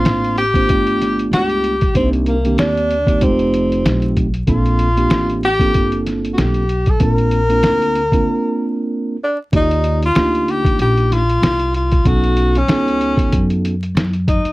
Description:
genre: hip hop, jazz-hop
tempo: 95 BPM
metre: 4/4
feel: swing 58% on 16ths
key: Bb major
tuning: A4 = 435 Hz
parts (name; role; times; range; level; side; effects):
- breathy tenor saxophone; melody; 0.0-14.5 s; Bb3 to Bb4; -18 LUFS; left 1 dB; none
- mellow tine electric piano; accompaniment; 0.0-13.7 s; Eb3 to D5; -19 LUFS; right 2 dB; none
- upright bass; bass; 0.0-14.5 s; F1 to F#2; -19 LUFS; equal; none
- lo-fi sampler-style drum kit; drums; 0.1-14.5 s; hi-hat, kick drum, snare drum; -18 LUFS; equal; none
room: little or no reverb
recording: dry, close 1970s-style studio recording, vinyl crackle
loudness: -13 LUFS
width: side -19 dB against mid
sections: 0.0-9.5 A section; 9.5-14.5 B section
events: break 8.3-9.5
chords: 0.0 Bbmaj9; 0.7 G7; 1.9 Cm9; 3.2 F7; 4.5 Bbmaj9; 9.5 Ebmaj9; 12.1 B9

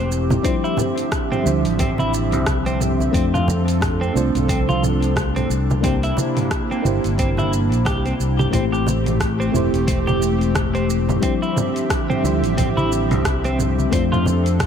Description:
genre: sunset chillout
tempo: 89 BPM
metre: 4/4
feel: swing 58% on 16ths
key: D minor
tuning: A4 = 440 Hz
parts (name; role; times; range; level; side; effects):
- mellow FM electric piano; accompaniment; 0.0-14.7 s; F3 to C5; -24 LUFS; moving between left 10 dB and right 6 dB; chorus, auto-pan, ping-pong delay
- airy breathy pad; sustained chords; 0.0-14.7 s; C3 to E5; -24 LUFS; equal; chorus
- twelve-string electric guitar; arpeggios; 0.0-14.3 s; C4 to G4; -27 LUFS; right 1 dB; ping-pong delay
- fingered electric bass; bass; 0.0-14.7 s; E1 to F2; -21 LUFS; equal; none
- deep house drum kit; drums; 0.1-14.7 s; hi-hat, rim click, shaker, toms; -26 LUFS; right 1 dB; none
- congas; percussion; 0.3-14.4 s; none; -26 LUFS; right 1 dB; none
- electronic kick drum; drums; 0.4-14.7 s; none; -24 LUFS; equal; none
room: light reverb, digital ambience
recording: none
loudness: -17 LUFS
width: side -8 dB against mid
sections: 0.0-14.7 A section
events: none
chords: 0.4 Dm11; 3.1 F6; 5.5 C9; 8.5 Am7; 11.2 Dm11; 13.9 F6

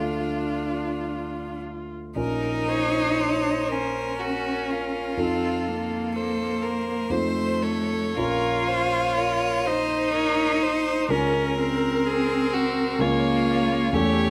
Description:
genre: classical, slow romantic movement for piano quartet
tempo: 50-65 BPM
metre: 3/4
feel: rubato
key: Bb minor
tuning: A4 = 441 Hz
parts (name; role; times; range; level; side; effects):
- clear violin; melody; 0.0-14.3 s; F4 to Db5; -32 LUFS; equal; none
- rich cello; second line; 0.0-14.3 s; A3 to F4; -28 LUFS; equal; none
- rich viola; accompaniment; 0.0-14.3 s; F4 to Db5; -33 LUFS; equal; none
- warm concert grand piano; accompaniment; 0.0-14.3 s; Bb1 to Bb4; -31 LUFS; equal; none
room: moderate recital hall reverb, RT60 1.4 s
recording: close, detailed microphones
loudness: -24 LUFS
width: mono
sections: 0.0-2.2 A section; 2.2-14.3 B section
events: none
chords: 0.0 Dm; 2.2 Bbm; 5.2 F7; 8.2 Bbm; 11.1 Bbm/Db

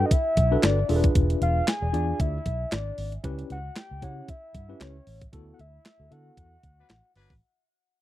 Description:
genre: early-eighties boogie funk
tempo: 115 BPM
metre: 4/4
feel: swing 56% on 16ths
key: unclear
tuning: A4 = 437 Hz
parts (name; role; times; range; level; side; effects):
- soft octave-layered synth lead; melody; 0.0-7.1 s; C#5 to G#5; -30 LUFS; left 1 dB; chorus, tape echo
- tine electric piano; accompaniment; 0.0-6.5 s; B3 to D5; -30 LUFS; left 2 dB; overdrive, fast stereo tremolo
- vintage muted fingered electric bass; bass; 0.0-7.4 s; E1 to D3; -27 LUFS; equal; none
- clean 12-bit digital drum machine; drums; 0.1-7.4 s; handclaps, hi-hat, kick drum, snare drum; -25 LUFS; equal; none
- clear horn section; second line; 6.8-7.3 s; F#3 to B4; -66 LUFS; left 4 dB; none
room: little or no reverb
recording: dry, close 1970s-style studio recording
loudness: -22 LUFS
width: side -14 dB against mid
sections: 0.0-7.4 A section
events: fade-out 0.0-7.4; band accent 5.3-7.4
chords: 0.0 Gmaj7; 0.9 E7b9; 3.2 C#m7b5; 5.3 D6

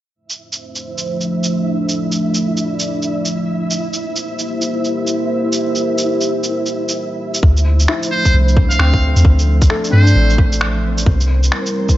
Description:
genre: future garage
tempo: 132 BPM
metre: 4/4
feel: swing 63% on 16ths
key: D minor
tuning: A4 = 438 Hz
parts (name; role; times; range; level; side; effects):
- dark analog pad; sustained chords; 0.8-12.0 s; F3 to D5; -20 LUFS; equal; chorus, sidechain pumping
- flickering grainy texture; texture; 0.6-12.0 s; C4 to E5; -27 LUFS; right 2 dB; built-in reverb
- electronic shaker and finger snaps; drums; 0.3-12.0 s; none; -21 LUFS; right 1 dB; none
- soft 808-style bass; bass; 7.4-11.5 s; A1 to G2; -12 LUFS; equal; sidechain pumping
- electronic kick drum; drums; 7.4-12.0 s; none; -14 LUFS; equal; none
- felt-muted upright piano; accompaniment; 7.9-11.1 s; A3 to E4; -24 LUFS; left 2 dB; sidechain pumping, tape echo
- trumpet with metal mute; melody; 8.1-10.4 s; C5 to F5; -21 LUFS; right 1 dB; analog delay
room: light reverb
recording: nothing above 7.6 kHz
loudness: -13 LUFS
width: side -14 dB against mid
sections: 0.2-7.4 A section; 7.4-12.0 B section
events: none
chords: 0.2 Dm7; 3.8 C7; 7.4 Dm7; 11.1 C7

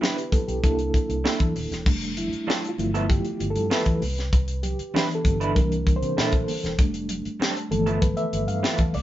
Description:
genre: lush 1970s-style soul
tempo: 97 BPM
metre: 4/4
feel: straight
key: C major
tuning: A4 = 440 Hz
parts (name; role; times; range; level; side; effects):
- reed electric piano; accompaniment; 0.0-9.0 s; E3 to F5; -27 LUFS; equal; fast tremolo
- electric guitar through a small old amp; riff; 0.0-8.8 s; F3 to B4; -28 LUFS; right 4 dB; tremolo
- tight funk drum kit; drums; 0.0-9.0 s; crash cymbal, hi-hat, kick drum, snare drum; -24 LUFS; equal; none
- congas; percussion; 0.0-9.0 s; none; -37 LUFS; right 2 dB; none
- vintage muted fingered electric bass; bass; 0.3-9.0 s; Eb1 to C3; -28 LUFS; equal; none
room: light reverb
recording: band playing live in one room, nothing above 7.5 kHz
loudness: -21 LUFS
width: side -13 dB against mid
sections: 0.0-1.9 A section; 1.9-9.0 B section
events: reed electric piano solo 1.9-9.0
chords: 0.0 Cmaj9 (rootless); 0.6 C13; 1.9 F69; 2.8 G13; 4.0 Cmaj9; 5.6 C13; 6.8 F69; 7.7 G13

